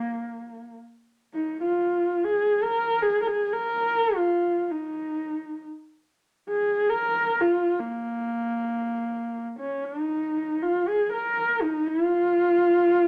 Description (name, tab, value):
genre	mongolian traditional, Mongolian folk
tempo	free time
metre	none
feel	none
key	Bb yu mode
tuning	A4 = 441 Hz
part	dark horsehead fiddle	solo	0.0-13.1 s	Bb3 to Bb4	-25 LUFS	equal	none
room	wet studio reverb, RT60 0.6 s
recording	none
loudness	-25 LUFS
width	mono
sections	0.0-10.1 A section; 10.1-13.1 B section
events	none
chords	none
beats	free time